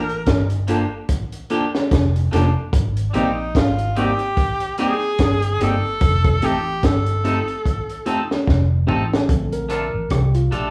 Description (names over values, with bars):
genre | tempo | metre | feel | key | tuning
lovers rock reggae | 73 BPM | 4/4 | swing 57% on 16ths | Bb major | A4 = 440 Hz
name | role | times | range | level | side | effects
clear tenor saxophone | melody | 0.0-8.1 s | D4 to Bb4 | -25 LUFS | equal | none
vintage muted fingered electric bass | bass | 0.0-10.7 s | F1 to C2 | -23 LUFS | equal | none
crunchy breakbeat drum kit | drums | 0.1-10.7 s | hi-hat, kick drum, rim click, snare drum, toms | -23 LUFS | equal | none
mellow tine electric piano | accompaniment | 0.7-10.7 s | D3 to Bb4 | -27 LUFS | equal | none
twangy electric guitar | stabs | 0.7-10.7 s | F3 to A4 | -28 LUFS | equal | none
room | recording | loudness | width
moderate large studio reverb, RT60 0.9 s | band playing live in one room, small room ambience | -20 LUFS | mono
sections
0.0-9.3 A section; 9.3-10.7 B section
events
drum fill 8.5-9.3; tine electric piano solo 9.3-10.7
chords
0.0 Gm7; 2.7 Abmaj7; 6.0 F7; 9.3 Bbmaj7